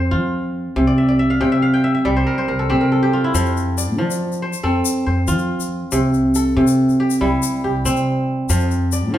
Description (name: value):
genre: west african traditional, West African string and xylophone music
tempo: 93 BPM (dotted quarters)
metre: 12/8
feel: straight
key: F major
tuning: A4 = 444 Hz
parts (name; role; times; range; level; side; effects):
- kora; arpeggios; 0.0-9.2 s; C3 to G5; -17 LUFS; equal; none
- upright bass; bass; 0.0-9.2 s; C2 to F3; -21 LUFS; equal; none
- egg shaker; percussion; 3.3-9.0 s; none; -27 LUFS; left 8 dB; none
room: wet large studio reverb, RT60 1.4 s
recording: band playing live in one room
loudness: -16 LUFS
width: side -12 dB against mid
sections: 0.0-9.2 A section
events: kora fill 0.9-3.3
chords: 0.0 F; 0.8 C5; 3.3 F; 5.9 C; 8.5 F5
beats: 0.12 | 0.76 1.41 2.05 2.70 | 3.34 3.99 4.63 5.28 | 5.92 6.57 7.21 7.85 | 8.50 9.14